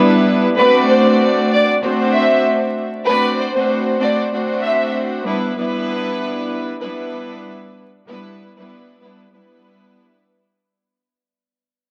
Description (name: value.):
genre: hip hop.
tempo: 96 BPM.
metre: 4/4.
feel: swing 57% on 16ths.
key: E minor.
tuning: A4 = 441 Hz.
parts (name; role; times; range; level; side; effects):
warm chamber string section; accompaniment; 0.0-10.5 s; G3 to D5; -19 LUFS; equal; cassette tape, high-pass filter, low-pass filter.
warm studio violin section; melody; 0.6-4.9 s; B4 to E5; -19 LUFS; equal; high-pass filter, low-pass filter, delay.
room: moderate plate reverb, RT60 3.5 s.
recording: dark, warm production, vinyl crackle.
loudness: -17 LUFS.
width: mono.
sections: 0.6-10.6 A section.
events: fade-out 0.6-10.6.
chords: 0.0 Em7; 0.6 D7; 5.3 Em7.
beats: | 0.57 1.20 1.82 2.45 | 3.07 3.70 4.32 4.95 | 5.57 6.20 6.82 7.45 | 8.07 8.70 9.32 9.95.